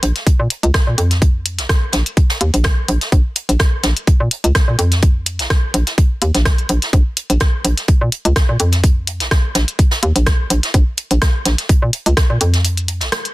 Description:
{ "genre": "minimal techno", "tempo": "126 BPM", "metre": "4/4", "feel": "swing 54% on 16ths", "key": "Bb minor", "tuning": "A4 = 442 Hz", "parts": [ { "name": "hollow knocking FM bass", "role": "bass", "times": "0.0-13.1 s", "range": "Bb1 to Bb2", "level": "-15 LUFS", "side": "equal", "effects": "tube saturation, sidechain pumping" }, { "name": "jazz brush drum kit", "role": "drums", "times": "0.0-13.2 s", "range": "hi-hat, snare drum", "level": "-25 LUFS", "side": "right 2 dB", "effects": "high-pass filter on hats, soft clipping on snare, high-pass filter on snare, high-pass filter on room" }, { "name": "minimal click drum kit", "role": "drums", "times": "0.0-13.3 s", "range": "hi-hat, rim click", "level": "-20 LUFS", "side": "left 1 dB", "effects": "soft clipping on snare" }, { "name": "electronic kick drum", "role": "drums", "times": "0.3-12.3 s", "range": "none", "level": "-13 LUFS", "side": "equal", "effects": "none" } ], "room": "small room ambience", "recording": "dense, heavily limited modern master", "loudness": "-13 LUFS", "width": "side -18 dB against mid", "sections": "0.0-13.3 A section", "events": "break 12.6-13.3", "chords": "none" }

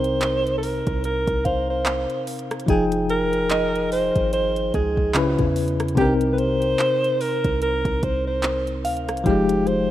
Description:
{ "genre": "contemporary R&B", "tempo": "73 BPM", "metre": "4/4", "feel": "swing 58% on 16ths", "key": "C minor", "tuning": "A4 = 442 Hz", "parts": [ { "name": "warm alto saxophone", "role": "melody", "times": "0.0-9.9 s", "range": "G4 to C5", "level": "-23 LUFS", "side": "right 1 dB", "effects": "ping-pong delay" }, { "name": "bell-like tine electric piano", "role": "accompaniment", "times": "0.0-9.9 s", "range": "C3 to G5", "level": "-24 LUFS", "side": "left 2 dB", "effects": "fast stereo tremolo" }, { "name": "warm 808-style bass", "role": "bass", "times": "0.0-9.9 s", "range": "F1 to Fb2", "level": "-28 LUFS", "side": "right 1 dB", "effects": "none" }, { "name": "smooth R&B drum kit", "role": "drums", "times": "0.0-9.9 s", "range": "handclaps, hi-hat, kick drum, rim click", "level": "-27 LUFS", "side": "right 1 dB", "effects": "none" }, { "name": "soft synth bell", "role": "texture", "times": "1.4-9.6 s", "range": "Eb5 to F5", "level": "-30 LUFS", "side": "right 3 dB", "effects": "chorus, ping-pong delay" } ], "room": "light reverb, digital ambience", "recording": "rough home demo mix", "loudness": "-19 LUFS", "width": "side -13 dB against mid", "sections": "0.0-9.9 A section", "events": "none", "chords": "0.0 Cm7; 2.7 Fm9; 5.1 Dbm7; 6.0 Cm7; 9.3 Fm9" }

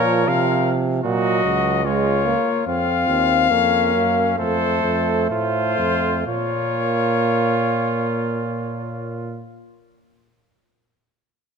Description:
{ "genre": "classical, imitative canzona for brass ensemble", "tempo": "60-80 BPM", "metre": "4/4", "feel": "straight", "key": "Bb minor", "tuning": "A4 = 440 Hz", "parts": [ { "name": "warm cornet", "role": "melody", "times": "0.0-9.5 s", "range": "C5 to F5", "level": "-22 LUFS", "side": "left 12 dB", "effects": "none" }, { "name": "warm trumpet", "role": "second line", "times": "0.0-9.5 s", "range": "Db4 to Bb4", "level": "-25 LUFS", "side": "right 7 dB", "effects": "none" }, { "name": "clear euphonium", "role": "accompaniment", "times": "0.0-9.5 s", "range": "F3 to C4", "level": "-23 LUFS", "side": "right 3 dB", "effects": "none" }, { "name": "warm bass trombone", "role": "bass", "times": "0.0-9.5 s", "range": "Db2 to C3", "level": "-24 LUFS", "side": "right 2 dB", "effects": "none" } ], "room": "moderate scoring stage reverb, RT60 1.9 s", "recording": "none", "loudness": "-17 LUFS", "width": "side -6 dB against mid", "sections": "0.0-6.3 A section; 6.3-10.2 B section", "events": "slowing down 0.0-6.3", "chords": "0.0 Bbm; 1.0 Ebm; 2.7 Bbm; 4.4 F; 6.3 Bbm" }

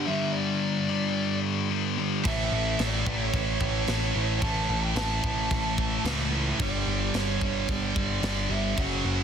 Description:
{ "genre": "heavy metal", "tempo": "110 BPM", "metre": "4/4", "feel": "straight", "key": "unclear", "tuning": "A4 = 440 Hz", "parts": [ { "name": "smooth overdriven lead guitar", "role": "melody", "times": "0.0-9.2 s", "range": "C#5 to A5", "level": "-33 LUFS", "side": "right 2 dB", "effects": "none" }, { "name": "scooped high-gain guitar", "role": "riff", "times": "0.0-9.2 s", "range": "F#2 to A3", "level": "-32 LUFS", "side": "left 11 dB", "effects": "distortion" }, { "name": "sludgy distorted guitar", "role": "riff", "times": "0.0-9.2 s", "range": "F#2 to A3", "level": "-31 LUFS", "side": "right 1 dB", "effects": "overdrive" }, { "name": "heavy high-gain guitar", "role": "riff", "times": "2.2-9.2 s", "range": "F#2 to A3", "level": "-32 LUFS", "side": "right 14 dB", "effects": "distortion" }, { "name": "growling picked electric bass", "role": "bass", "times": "2.3-9.2 s", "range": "F#1 to C#2", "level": "-30 LUFS", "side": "equal", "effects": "overdrive" }, { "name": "tight metal drum kit", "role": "drums", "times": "2.3-8.9 s", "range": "crash cymbal, kick drum, snare drum", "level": "-32 LUFS", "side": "right 1 dB", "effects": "none" } ], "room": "small room reverb", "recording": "dense, heavily limited modern master", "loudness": "-24 LUFS", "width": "side -8 dB against mid", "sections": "0.0-9.2 A section", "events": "none", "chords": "0.0 G5; 2.2 A; 6.6 G5" }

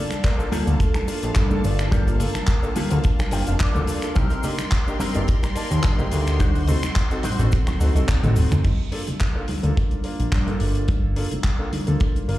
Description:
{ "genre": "nu-disco, nu disco", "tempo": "107 BPM", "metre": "4/4", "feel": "swing 54% on 16ths", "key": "G minor", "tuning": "A4 = 440 Hz", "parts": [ { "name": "soft octave-layered synth lead", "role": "melody", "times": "0.0-3.6 s", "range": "A4 to D5", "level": "-32 LUFS", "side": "equal", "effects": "chorus, tape echo" }, { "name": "clear grand piano", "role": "accompaniment", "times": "0.0-12.4 s", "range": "Eb3 to A5", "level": "-30 LUFS", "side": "equal", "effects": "slapback echo" }, { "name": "rich studio string section", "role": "sustained chords", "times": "0.0-8.6 s", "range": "F#4 to C6", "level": "-35 LUFS", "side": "left 1 dB", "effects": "sidechain pumping" }, { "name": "damped 70s drum kit", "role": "drums", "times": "0.1-12.4 s", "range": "cabasa, crash cymbal, finger snaps, handclaps, hi-hat, toms", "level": "-30 LUFS", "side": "left 1 dB", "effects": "none" }, { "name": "congas and bongos", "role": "percussion", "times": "0.1-12.3 s", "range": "none", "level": "-30 LUFS", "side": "right 2 dB", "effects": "none" }, { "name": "electric guitar with an envelope filter", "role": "riff", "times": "0.2-8.3 s", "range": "Bb3 to G5", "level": "-31 LUFS", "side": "left 3 dB", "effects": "ensemble chorus, slapback echo" }, { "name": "kick drum", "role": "drums", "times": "0.2-12.1 s", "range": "none", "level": "-20 LUFS", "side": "equal", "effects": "none" }, { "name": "fat analog bass", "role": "bass", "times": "0.5-12.4 s", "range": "D1 to G2", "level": "-21 LUFS", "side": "equal", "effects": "sidechain pumping" } ], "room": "studio ambience", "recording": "played on a big sound system in a bare room, large studio reverb", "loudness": "-19 LUFS", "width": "side -15 dB against mid", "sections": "0.0-8.6 A section; 8.6-12.4 B section", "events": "drop 0.0-8.6; clean electric guitar fill 3.0-4.2; drum fill 8.1-8.6", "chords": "0.0 Gm9; 4.2 Cm7; 6.4 D7b9; 8.6 Gm9" }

